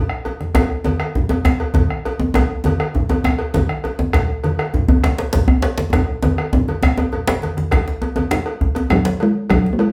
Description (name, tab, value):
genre	west african traditional, West African drum ensemble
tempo	134 BPM (dotted quarters)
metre	12/8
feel	straight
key	unclear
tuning	A4 = 440 Hz
part	bombo	percussion	0.1-9.6 s	none	-24 LUFS	equal	none
part	cowbell	percussion	0.3-9.9 s	none	-28 LUFS	equal	none
part	djembe	percussion	0.3-9.8 s	none	-26 LUFS	equal	none
part	congas	percussion	0.4-9.6 s	none	-25 LUFS	equal	none
part	djembe	percussion	0.5-9.2 s	none	-21 LUFS	equal	none
part	talking drum	melody	8.9-9.9 s	F#3 to A#3	-18 LUFS	equal	none
room	wet studio reverb, RT60 0.6 s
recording	heard from further back in the room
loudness	-18 LUFS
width	mono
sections	0.0-7.7 A section; 7.7-9.9 B section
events	drum fill 5.9-7.7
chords	none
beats	0.10 | 0.55 1.00 1.45 1.90 | 2.35 2.79 3.24 3.69 | 4.14 4.58 5.03 5.48 | 5.93 6.38 6.82 7.27 | 7.72 8.17 8.61 9.06 | 9.51